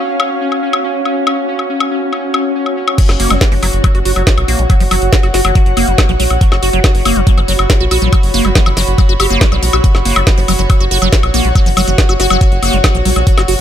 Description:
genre	psychedelic trance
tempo	140 BPM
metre	4/4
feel	straight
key	F# major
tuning	A4 = 440 Hz
part	pulsing gated texture	sustained chords	0.0-13.6 s	C#4 to F#4	-20 LUFS	left 1 dB	chorus, built-in reverb, sidechain pumping
part	airy breathy pad	texture	0.0-13.6 s	F#4 to B5	-20 LUFS	right 1 dB	chorus, sidechain pumping
part	drum and bass drum kit	drums	0.2-13.6 s	crash cymbal, hi-hat, snare drum, woodblock	-17 LUFS	left 2 dB	overdrive
part	liquid acid bass	riff	3.0-13.6 s	E#3 to G4	-18 LUFS	moving between left 3 dB and right 4 dB	phaser, auto-pan, sidechain pumping, dub echo
part	electronic kick drum	drums	3.0-13.4 s	none	-10 LUFS	equal	overdrive
part	round analog bass	bass	3.1-13.6 s	F#1 to A#1	-15 LUFS	equal	none
room	little or no reverb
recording	none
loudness	-10 LUFS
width	side -10 dB against mid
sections	0.0-3.0 A section; 3.0-13.6 B section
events	drop 3.0-13.6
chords	0.0 F#5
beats	0.41 0.84 | 1.27 1.70 2.13 2.55 | 2.98 3.41 3.84 4.27 | 4.70 5.13 5.55 5.98 | 6.41 6.84 7.27 7.70 | 8.13 8.55 8.98 9.41 | 9.84 10.27 10.70 11.13 | 11.55 11.98 12.41 12.84 | 13.27

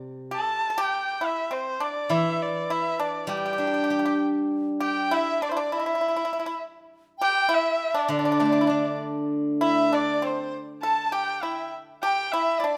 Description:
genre	chinese traditional, Chinese chamber ensemble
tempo	100 BPM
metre	2/4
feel	rubato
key	G zhi mode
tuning	A4 = 440 Hz
part	steel-string zither	accompaniment	0.0-5.1, 8.1-9.9 s	C3 to G4	-28 LUFS	equal	none
part	pipa	second line	0.3-12.8 s	C4 to A4	-31 LUFS	equal	none
part	warm erhu	melody	0.4-12.8 s	C5 to A5	-30 LUFS	equal	none
part	large dizi	second line	4.8-12.8 s	C5 to A5	-32 LUFS	equal	none
room	moderate recital hall reverb, RT60 1.5 s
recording	none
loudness	-25 LUFS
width	mono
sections	0.0-4.5 A section; 4.5-12.8 B section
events	none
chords	none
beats	0.33 | 0.93 1.52 | 2.11 2.70 | 3.30 3.90 | 4.52 5.12 | 5.72 6.32 | 6.91 7.51 | 8.11 8.71 | 9.32 9.93 | 10.53 11.13 | 11.72 12.32

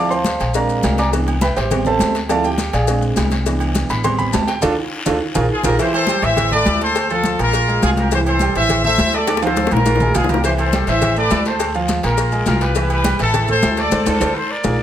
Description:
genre	latin, salsa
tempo	206 BPM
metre	4/4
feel	straight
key	unclear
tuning	A4 = 445 Hz
part	warm concert grand piano	accompaniment	0.0-14.7 s	E3 to F6	-20 LUFS	right 3 dB	none
part	upright bass	bass	0.0-14.8 s	A1 to D2	-21 LUFS	equal	none
part	congas	percussion	0.1-14.7 s	none	-24 LUFS	left 2 dB	none
part	maracas	percussion	0.1-14.7 s	none	-32 LUFS	left 9 dB	none
part	cowbell and bongos	percussion	0.3-14.7 s	none	-27 LUFS	left 7 dB	none
part	guiro	percussion	0.3-5.7, 10.4-14.7 s	none	-32 LUFS	left 4 dB	none
part	timbales and agogo bells	percussion	0.3-14.7 s	none	-26 LUFS	right 3 dB	none
part	warm horn section	melody	5.5-14.8 s	E4 to E5	-19 LUFS	left 1 dB	none
room	moderate large studio reverb, RT60 1.1 s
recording	none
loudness	-14 LUFS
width	side -10 dB against mid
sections	0.0-5.8 A section; 5.8-14.8 B section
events	grand piano solo 0.0-5.8; band accent 4.6-5.8, 13.9-14.8; drum fill 4.9-5.8, 9.3-10.4, 14.5-14.8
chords	0.0 Dm7; 0.5 Bb7; 1.1 Am7; 2.3 Dm7; 2.9 Bb7; 3.5 Cmaj7; 4.0 Am7; 4.6 Dm; 5.2 Bb5; 5.8 C; 6.4 Am; 7.0 Dm; 7.5 Bb5; 8.1 C; 8.7 Am; 9.3 Dm7; 9.9 Bb5; 10.4 C; 11.0 Am; 11.6 Dm; 12.2 Bb5; 12.8 Cmaj7; 13.3 Am; 13.9 Dm7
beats	0.26 0.55 0.84 | 1.13 1.42 1.71 2.00 | 2.29 2.59 2.88 3.17 | 3.46 3.75 4.04 4.33 | 4.62 4.92 5.21 5.50 | 5.79 6.08 6.37 6.66 | 6.95 7.24 7.53 7.82 | 8.12 8.41 8.70 8.99 | 9.28 9.57 9.86 10.15 | 10.44 10.73 11.02 11.31 | 11.60 11.89 12.18 12.47 | 12.76 13.05 13.34 13.63 | 13.92 14.21 14.50 14.79

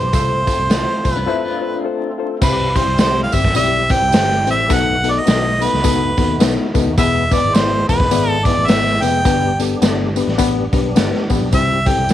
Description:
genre	uptempo 1960s-style soul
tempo	105 BPM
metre	4/4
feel	swing 60% on 8ths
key	C major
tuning	A4 = 440 Hz
part	clear harmonica	melody	0.0-12.1 s	B4 to G5	-18 LUFS	right 1 dB	none
part	reed electric piano	accompaniment	0.0-12.1 s	B3 to D5	-20 LUFS	left 8 dB	none
part	percussive tonewheel organ	sustained chords	0.0-12.1 s	G3 to A4	-27 LUFS	right 2 dB	slow rotary speaker, chorus vibrato
part	vintage muted picked electric bass	bass	0.0-12.1 s	E1 to D#2	-22 LUFS	equal	transformer saturation
part	raw garage drum kit	drums	0.1-12.1 s	crash cymbal, hi-hat, kick drum, snare drum	-18 LUFS	right 1 dB	none
part	tambourine	percussion	0.1-12.1 s	none	-31 LUFS	right 12 dB	none
part	electric guitar through a small old amp	riff	1.2-2.3 s	B3 to F4	-24 LUFS	left 8 dB	tremolo
room	light reverb, small room ambience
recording	1960s-style stereo with parts hard left and right, vinyl crackle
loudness	-13 LUFS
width	side -12 dB against mid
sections	0.0-2.4 A section; 2.4-12.1 B section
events	break 1.3-2.4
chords	0.1 F/C; 2.4 C; 4.7 B7; 7.0 E; 9.3 G; 11.5 C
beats	| 0.14 0.71 1.28 1.85 | 2.42 2.99 3.56 4.13 | 4.70 5.27 5.84 6.41 | 6.98 7.55 8.12 8.69 | 9.26 9.83 10.39 10.96 | 11.53 12.10

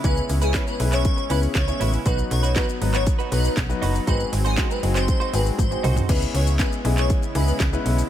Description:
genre	dance-pop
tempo	119 BPM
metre	4/4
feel	straight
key	C# minor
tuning	A4 = 438 Hz
part	airy dreamy lead	melody	0.0-7.5 s	G#4 to C#5	-28 LUFS	left 1 dB	chorus, sidechain pumping, tape echo
part	clear grand piano	accompaniment	0.0-8.0 s	F#3 to C#5	-29 LUFS	left 7 dB	sidechain pumping
part	soft supersaw	sustained chords	0.0-8.1 s	C#3 to E4	-33 LUFS	right 1 dB	sidechain pumping
part	direct-recorded clean electric guitar	riff	0.0-6.1 s	C#4 to B#4	-32 LUFS	right 9 dB	lush chorus
part	slap-like FM bass	bass	0.0-8.0 s	F#1 to C#2	-22 LUFS	equal	sidechain pumping
part	house drum kit	drums	0.0-8.1 s	crash cymbal, handclaps, hi-hat, kick drum, shaker, snare drum, toms	-24 LUFS	equal	none
room	little or no reverb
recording	none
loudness	-19 LUFS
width	side -11 dB against mid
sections	0.0-6.1 A section; 6.1-8.1 A section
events	drop 0.0-6.1, 6.1-8.1; drum fill 5.6-6.1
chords	0.0 C#m7; 2.1 B; 4.1 G#7; 6.1 C#m7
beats	| 0.04 0.55 1.05 1.55 | 2.06 2.56 3.07 3.57 | 4.08 4.58 5.08 5.59 | 6.09 6.60 7.10 7.60

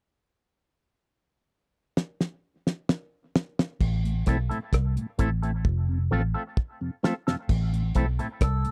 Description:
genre	dub reggae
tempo	65 BPM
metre	4/4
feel	straight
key	A minor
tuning	A4 = 439 Hz
part	cloth-damped thuddy drum kit	drums	2.0-8.7 s	crash cymbal, hi-hat, kick drum, rim click, snare drum	-27 LUFS	equal	none
part	vintage muted fingered electric bass	bass	3.8-8.6 s	F1 to C2	-28 LUFS	equal	none
part	mellow tonewheel organ	accompaniment	4.0-8.7 s	F2 to C4	-34 LUFS	equal	chorus vibrato, slow rotary speaker
part	electric guitar with an envelope filter	accompaniment	4.3-8.3 s	A3 to A4	-36 LUFS	equal	dub echo
part	melodica	melody	8.4-8.7 s	A4	-34 LUFS	equal	none
room	little or no reverb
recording	dry, close 1970s-style studio recording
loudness	-27 LUFS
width	mono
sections	0.1-3.8 A section; 3.8-7.5 B section; 7.5-8.7 C section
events	drum fill 2.0-3.8, 5.6-7.5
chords	0.1 N.C.; 3.8 Am; 5.6 F; 7.5 Am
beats	| 0.12 1.04 1.96 2.88 | 3.81 4.73 5.65 6.57 | 7.49 8.41

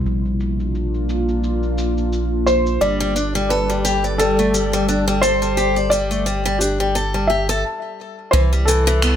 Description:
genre	folktronica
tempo	87 BPM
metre	4/4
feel	swing 56% on 16ths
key	unclear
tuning	A4 = 441 Hz
part	warbly tape-like pad	sustained chords	0.0-7.6 s	G3 to D5	-24 LUFS	equal	chorus, built-in reverb
part	round analog bass	bass	0.0-9.2 s	G1 to C2	-22 LUFS	equal	none
part	electronic shaker and finger snaps	drums	0.0-9.2 s	none	-28 LUFS	left 1 dB	low-pass filter on perc, low-pass filter on snare, low-pass filter on hats, low-pass filter on room
part	felt-muted upright piano	melody	2.5-9.2 s	G4 to E5	-20 LUFS	equal	plate reverb
part	picked acoustic archtop guitar	arpeggios	2.8-9.2 s	E3 to D5	-21 LUFS	left 1 dB	none
part	kick drum	drums	8.3-8.5 s	none	-22 LUFS	equal	none
room	moderate studio reverb, RT60 0.6 s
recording	none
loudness	-16 LUFS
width	side -9 dB against mid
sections	0.0-8.3 A section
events	stop 7.6-8.3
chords	0.1 Bb; 2.8 Gsus2; 8.3 Cmaj7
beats	| 0.06 0.74 1.44 2.12 | 2.81 3.50 4.19 4.88 | 5.57 6.26 6.95 7.64 | 8.33 9.02

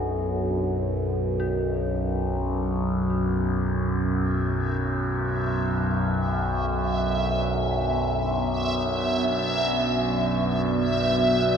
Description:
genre	dark ambient drone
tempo	free time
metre	none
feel	none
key	B minor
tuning	A4 = 441 Hz
part	dark detuned synth bell	arpeggios	0.0-11.6 s	D4 to A4	-41 LUFS	left 1 dB	chorus, phaser, ping-pong delay
part	overtone-sweeping drone	drone	0.0-11.6 s	B1 to F#2	-24 LUFS	equal	chorus, built-in reverb
part	dark analog pad	sustained chords	4.2-11.6 s	B3 to D5	-29 LUFS	right 1 dB	chorus, phaser
part	backwards swelling texture	texture	5.5-11.6 s	E5	-28 LUFS	right 1 dB	built-in reverb
room	wet cathedral reverb, RT60 5.9 s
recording	in a vast, echoing space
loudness	-22 LUFS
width	side -7 dB against mid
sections	0.0-11.6 A section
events	fade-in on synth bell 0.0-11.6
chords	0.0 Bm7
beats	free time

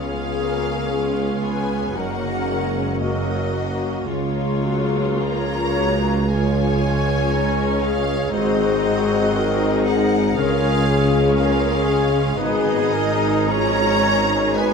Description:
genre	classical, slow romantic movement for symphony orchestra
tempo	51-60 BPM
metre	4/4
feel	rubato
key	unclear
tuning	A4 = 441 Hz
part	rich studio violin section	melody	0.0-14.7 s	C#5 to A#5	-28 LUFS	left 2 dB	none
part	bright large flute ensemble	second line	0.0-14.7 s	E#4 to C#5	-28 LUFS	equal	none
part	dark clarinet	second line	0.0-14.7 s	E#4 to C#5	-29 LUFS	right 2 dB	none
part	rich studio violin section	second line	0.0-14.7 s	Cb4 to C#5	-29 LUFS	left 3 dB	none
part	rich studio viola section	accompaniment	0.0-14.7 s	Eb3 to D#4	-26 LUFS	left 2 dB	none
part	mellow French horn section	sustained chords	0.0-14.7 s	G#3 to Eb4	-27 LUFS	left 2 dB	none
part	concert harp	arpeggios	0.0-14.7 s	F#2 to Eb6	-26 LUFS	left 10 dB	none
part	rich studio cello section	bass	0.0-14.7 s	C#2 to C#3	-27 LUFS	right 4 dB	none
part	rich studio double bass section	bass	0.0-14.7 s	F#1 to C#2	-28 LUFS	right 4 dB	none
part	warm tuba	bass	0.0-14.7 s	F#1 to C#2	-27 LUFS	right 5 dB	none
room	wet scoring stage reverb, RT60 1.8 s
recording	none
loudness	-17 LUFS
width	side -5 dB against mid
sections	0.0-14.7 A section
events	none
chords	0.0 C#7; 2.0 F#; 4.1 C#; 8.3 G#7; 10.4 C#; 12.4 Abm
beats	0.93 1.96 3.01 | 4.08 5.22 6.30 7.31 | 8.33 9.36 10.36 11.38 | 12.38 13.49 14.56

